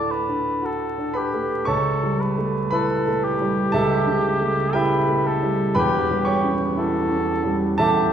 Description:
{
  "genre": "classical, romantic duo for cor anglais and grand piano",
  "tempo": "58 BPM",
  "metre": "4/4",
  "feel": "rubato",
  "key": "unclear",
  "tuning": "A4 = 443 Hz",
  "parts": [
    { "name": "mellow cor anglais", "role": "melody", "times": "0.0-8.1 s", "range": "G4 to D5", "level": "-25 LUFS", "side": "left 1 dB", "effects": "none" },
    { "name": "dark baby grand piano", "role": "accompaniment", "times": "0.0-8.1 s", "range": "E1 to C#6", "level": "-20 LUFS", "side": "right 1 dB", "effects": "none" }
  ],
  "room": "wet recital hall reverb, RT60 1.6 s",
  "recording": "heard from further back in the room, vinyl crackle",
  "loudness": "-19 LUFS",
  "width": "side -9 dB against mid",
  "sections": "0.0-8.1 A section",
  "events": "none",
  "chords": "0.0 D; 1.7 A7/C#; 5.8 C#dim/E",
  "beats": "0.63 | 1.68 2.72 3.73 4.74 | 5.76 6.78 7.79"
}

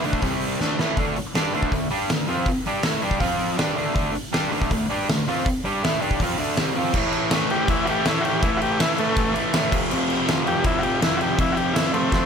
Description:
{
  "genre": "garage rock duo or trio",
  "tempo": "161 BPM",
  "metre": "4/4",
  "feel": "straight",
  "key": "A minor",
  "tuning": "A4 = 441 Hz",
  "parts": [
    { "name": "fuzz guitar", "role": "riff", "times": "0.0-12.3 s", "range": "F2 to A4", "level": "-23 LUFS", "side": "equal", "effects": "distortion" },
    { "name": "oversized low-tuned drum kit", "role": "drums", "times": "0.0-12.2 s", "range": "crash cymbal, hi-hat, kick drum, snare drum", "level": "-24 LUFS", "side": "equal", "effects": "none" },
    { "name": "overdriven combo organ", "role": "melody", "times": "7.5-12.3 s", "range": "A3 to G4", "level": "-24 LUFS", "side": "left 2 dB", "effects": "none" }
  ],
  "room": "light reverb",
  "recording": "none",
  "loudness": "-20 LUFS",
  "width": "side -6 dB against mid",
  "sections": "0.0-6.9 A section; 6.9-12.3 B section",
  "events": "drum fill 0.6-1.0",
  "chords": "0.2 C5; 0.6 A5; 1.0 D5; 3.2 F5; 3.6 D5; 6.9 A5; 9.7 F",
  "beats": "0.22 0.59 | 0.97 1.34 1.72 2.09 | 2.46 2.83 3.21 3.58 | 3.96 4.33 4.70 5.07 | 5.45 5.82 6.19 6.57 | 6.94 7.31 7.68 8.05 | 8.42 8.79 9.16 9.53 | 9.90 10.27 10.64 11.01 | 11.38 11.75 12.12"
}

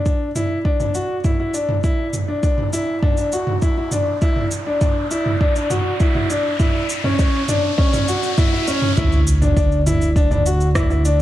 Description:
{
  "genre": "piano and strings electronica",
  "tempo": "101 BPM",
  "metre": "4/4",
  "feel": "straight",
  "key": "D major",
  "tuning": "A4 = 438 Hz",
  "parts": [
    { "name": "riser and sub drop", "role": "sound effects", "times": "1.2-11.2 s", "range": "none", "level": "-27 LUFS", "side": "equal", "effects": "none" },
    { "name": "clear concert grand piano", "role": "riff", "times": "0.1-11.2 s", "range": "C#4 to F#4", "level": "-20 LUFS", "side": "left 1 dB", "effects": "digital delay" },
    { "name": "electronic kick drum", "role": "drums", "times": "0.1-10.9 s", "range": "none", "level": "-18 LUFS", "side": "equal", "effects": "none" },
    { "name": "organic electronic drum kit", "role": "drums", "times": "0.1-11.2 s", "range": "rim click, shaker, toms", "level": "-24 LUFS", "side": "right 1 dB", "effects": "none" },
    { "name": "dark detuned saw bass", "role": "bass", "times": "9.0-11.2 s", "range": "D2", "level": "-18 LUFS", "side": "equal", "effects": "sidechain pumping" }
  ],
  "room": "moderate concert hall reverb, RT60 2.2 s",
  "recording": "dark, warm production",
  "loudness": "-16 LUFS",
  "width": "side -13 dB against mid",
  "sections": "0.0-9.0 A section; 9.0-11.2 B section",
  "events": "build-up 0.0-9.0; riser 1.2-9.0; drop 9.0-11.2; impact 9.0-11.2",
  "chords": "0.0 Dsus2; 6.6 C#m; 9.0 Dsus2",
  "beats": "0.06 0.66 1.25 | 1.84 2.44 3.03 3.63 | 4.22 4.82 5.41 6.00 | 6.60 7.19 7.79 8.38 | 8.97 9.57 10.16 10.76"
}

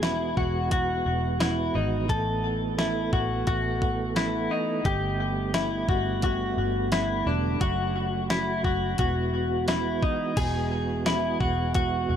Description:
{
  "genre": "dream pop",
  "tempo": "87 BPM",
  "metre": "4/4",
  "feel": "straight",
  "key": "E major",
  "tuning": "A4 = 439 Hz",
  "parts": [
    { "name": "mellow tonewheel organ", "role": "sustained chords", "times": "0.0-12.2 s", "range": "C#3 to A4", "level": "-31 LUFS", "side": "right 5 dB", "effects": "chorus vibrato, stopped rotary speaker" },
    { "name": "direct-recorded clean electric guitar", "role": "arpeggios", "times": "0.0-12.2 s", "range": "D4 to A4", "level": "-27 LUFS", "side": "left 3 dB", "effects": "lush chorus, digital delay" },
    { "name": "vintage muted fingered electric bass", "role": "bass", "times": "0.0-12.2 s", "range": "E1 to A1", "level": "-31 LUFS", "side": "equal", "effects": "none" },
    { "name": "crisp 8-bit digital drum machine", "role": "drums", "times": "0.0-11.9 s", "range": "crash cymbal, hi-hat, kick drum, snare drum", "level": "-28 LUFS", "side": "equal", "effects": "none" }
  ],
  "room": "light reverb, digital ambience",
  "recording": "none",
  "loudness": "-24 LUFS",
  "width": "side -9 dB against mid",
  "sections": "0.0-10.4 A section; 10.4-12.2 A section",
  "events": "none",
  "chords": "0.0 Eadd9; 2.1 Asus2; 4.9 Gadd9; 7.6 F#m; 9.0 Eadd9",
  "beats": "0.03 0.72 1.41 | 2.10 2.79 3.48 4.16 | 4.85 5.54 6.23 6.92 | 7.61 8.30 8.99 9.68 | 10.37 11.06 11.75"
}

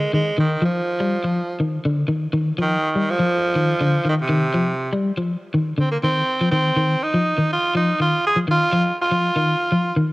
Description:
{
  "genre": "afrobeat",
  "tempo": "122 BPM",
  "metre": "4/4",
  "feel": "straight",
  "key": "F dorian",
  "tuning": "A4 = 440 Hz",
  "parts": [
    { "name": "raspy tenor saxophone", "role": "melody", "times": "0.0-9.9 s", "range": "C3 to Ab4", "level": "-20 LUFS", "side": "right 1 dB", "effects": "cassette tape" },
    { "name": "electric guitar at the edge of break-up", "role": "arpeggios", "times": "0.0-10.1 s", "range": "D3 to G3", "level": "-20 LUFS", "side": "left 1 dB", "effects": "harmonic tremolo" }
  ],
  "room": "moderate spring reverb, RT60 2.7 s",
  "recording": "home recording on cassette",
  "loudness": "-18 LUFS",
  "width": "side -20 dB against mid",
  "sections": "0.0-6.3 A section; 6.3-10.1 A section",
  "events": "none",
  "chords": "0.0 F5",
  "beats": "| 0.36 0.85 1.34 1.84 | 2.33 2.82 3.32 3.81 | 4.30 4.80 5.29 5.78 | 6.28 6.77 7.26 7.75 | 8.25 8.74 9.23 9.73"
}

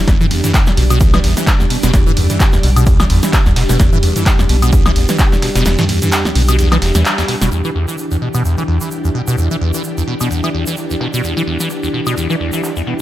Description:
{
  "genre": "acid house",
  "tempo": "129 BPM",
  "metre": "4/4",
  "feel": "swing 56% on 16ths",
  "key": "E minor",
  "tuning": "A4 = 439 Hz",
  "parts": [
    { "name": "string machine, full ensemble", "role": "sustained chords", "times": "0.0-13.0 s", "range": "E3 to G4", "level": "-21 LUFS", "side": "equal", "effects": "ensemble chorus, sidechain pumping" },
    { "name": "round analog bass", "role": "bass", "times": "0.0-7.5 s", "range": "E1 to E2", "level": "-14 LUFS", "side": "equal", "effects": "sidechain pumping" },
    { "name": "liquid acid bass", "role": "riff", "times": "0.1-12.9 s", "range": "E2 to E3", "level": "-17 LUFS", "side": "equal", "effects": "phaser, tube saturation, analog chorus, sidechain pumping" },
    { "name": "dusty soul sampler-style drum kit", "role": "drums", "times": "0.1-13.0 s", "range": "hi-hat, ride cymbal, snare drum", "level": "-30 LUFS", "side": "right 1 dB", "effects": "none" },
    { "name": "electronic kick drum", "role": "drums", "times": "0.1-5.3 s", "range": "none", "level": "-13 LUFS", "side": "equal", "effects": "none" },
    { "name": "punchy analog drum machine", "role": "drums", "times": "0.1-12.7 s", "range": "handclaps, hi-hat, ride cymbal, snare drum, toms, woodblock", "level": "-18 LUFS", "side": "equal", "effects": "low-pass filter on snare, low-pass filter on hats, low-pass filter on toms, low-pass filter on perc, low-pass filter on cymbals" },
    { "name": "egg shaker", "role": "percussion", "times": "0.1-12.8 s", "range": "none", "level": "-28 LUFS", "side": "right 2 dB", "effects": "none" }
  ],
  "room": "digital ambience",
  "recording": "none",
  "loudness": "-12 LUFS",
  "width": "side -14 dB against mid",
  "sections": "0.0-7.5 A section; 7.5-13.0 B section",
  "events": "drop 0.0-7.5; kick drops out 5.7-7.5; band accent 7.1",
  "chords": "0.0 Em7",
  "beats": "| 0.08 0.54 1.01 1.47 | 1.94 2.40 2.87 3.33 | 3.80 4.26 4.73 5.19 | 5.66 6.12 6.59 7.05 | 7.52 7.98 8.45 8.91 | 9.38 9.84 10.31 10.77 | 11.24 11.70 12.17 12.63"
}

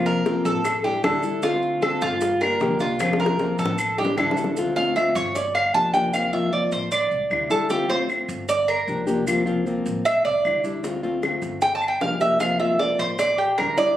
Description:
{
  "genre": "latin, Cuban son and guajira",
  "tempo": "153 BPM",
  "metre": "4/4",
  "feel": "straight",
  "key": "D minor",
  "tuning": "A4 = 440 Hz",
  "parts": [
    { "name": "nylon-string guitar", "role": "accompaniment", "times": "0.0-14.0 s", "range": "C3 to G4", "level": "-25 LUFS", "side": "left 2 dB", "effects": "none" },
    { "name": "Cuban tres", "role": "arpeggios", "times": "0.0-14.0 s", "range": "F4 to A5", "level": "-22 LUFS", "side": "right 2 dB", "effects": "none" },
    { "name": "upright bass", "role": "bass", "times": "0.0-14.0 s", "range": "G1 to D2", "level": "-36 LUFS", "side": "equal", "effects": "none" },
    { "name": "bongos", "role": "percussion", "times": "0.1-4.5, 10.8-14.0 s", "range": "none", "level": "-28 LUFS", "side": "left 4 dB", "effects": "none" },
    { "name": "maracas", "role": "percussion", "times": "0.1-14.0 s", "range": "none", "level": "-40 LUFS", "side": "right 4 dB", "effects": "none" },
    { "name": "claves", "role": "percussion", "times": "0.6-13.8 s", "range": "none", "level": "-28 LUFS", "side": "left 2 dB", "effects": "none" }
  ],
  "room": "moderate small room reverb, RT60 0.5 s",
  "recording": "recorded on a phone in the room, club reverb",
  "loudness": "-20 LUFS",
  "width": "side -12 dB against mid",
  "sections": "0.0-4.6 A section; 4.6-14.0 B section",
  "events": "drum fill 3.0-4.6; Cuban tres solo 4.6-14.0",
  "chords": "0.0 C7sus4; 0.6 A7sus4; 1.4 Dm7; 2.2 Gm7; 3.0 C7sus4; 3.8 A7sus4; 4.6 Dm7; 5.4 Gm7; 6.1 C7sus4; 6.9 A7sus4; 7.7 Dm7; 8.5 Gm7; 9.3 C7sus4; 10.1 A7sus4; 10.8 Dm7; 11.6 Gm7; 12.4 C7sus4; 13.2 A7sus4",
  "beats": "0.26 0.65 1.04 | 1.43 1.82 2.22 2.61 | 3.00 3.39 3.78 4.17 | 4.57 4.96 5.35 5.74 | 6.13 6.53 6.92 7.31 | 7.70 8.10 8.49 8.88 | 9.27 9.66 10.05 10.45 | 10.84 11.23 11.62 12.01 | 12.41 12.80 13.19 13.58"
}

